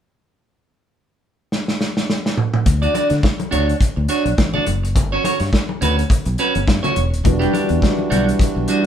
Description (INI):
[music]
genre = disco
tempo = 105 BPM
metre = 4/4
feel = swing 56% on 16ths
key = D major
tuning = A4 = 438 Hz
[part]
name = warm soul drum kit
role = drums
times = 1.5-8.8 s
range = hi-hat, kick drum, snare drum, toms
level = -18 LUFS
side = equal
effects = none
[part]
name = clean electric guitar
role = accompaniment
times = 2.7-8.9 s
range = G3 to D5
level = -20 LUFS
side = right 2 dB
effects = none
[part]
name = fingered electric bass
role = bass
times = 2.7-8.6 s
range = Eb1 to D3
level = -21 LUFS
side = equal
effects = none
[part]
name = congas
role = percussion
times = 2.7-8.7 s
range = none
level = -28 LUFS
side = left 4 dB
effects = none
[part]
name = mellow tine electric piano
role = accompaniment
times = 7.2-8.9 s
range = G3 to B4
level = -22 LUFS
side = left 1 dB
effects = medium stereo tremolo
[part]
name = pedal harmonium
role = sustained chords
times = 7.3-8.9 s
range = E3 to F#4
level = -24 LUFS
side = equal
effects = none
[sound]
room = moderate studio reverb, RT60 0.7 s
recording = band playing live in one room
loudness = -16 LUFS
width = side -9 dB against mid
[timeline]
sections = 0.4-2.7 A section; 2.7-8.9 B section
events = drum fill 1.5-2.7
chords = 0.4 N.C.; 2.7 Dmaj7; 5.0 Gmaj7#11; 7.0 Em9